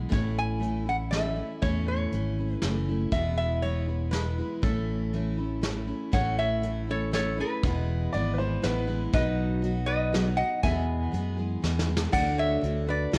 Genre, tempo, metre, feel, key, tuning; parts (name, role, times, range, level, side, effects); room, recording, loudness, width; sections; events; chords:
honky-tonk and classic country; 120 BPM; 3/4; straight; A major; A4 = 440 Hz
picked steel-string acoustic guitar; accompaniment; 0.0-13.2 s; E2 to G#4; -34 LUFS; equal
fingered electric bass; bass; 0.0-13.2 s; E1 to F#2; -32 LUFS; equal
lap resonator guitar; melody; 0.1-13.2 s; G#4 to G#5; -33 LUFS; equal
soft brush drum kit; drums; 0.1-13.2 s; crash cymbal, hi-hat, kick drum, snare drum; -32 LUFS; equal
bright upright piano; second line; 8.1-9.0 s; B4 to D5; -34 LUFS; equal
light reverb; worn, warbling old tape, cassette tape, warbly pitch drift; -28 LUFS; mono
0.0-6.1 A section; 6.1-13.2 B section
drum fill 11.6-12.1
0.1 A; 3.1 E; 4.6 A; 7.6 E; 9.1 B; 10.6 E; 12.1 D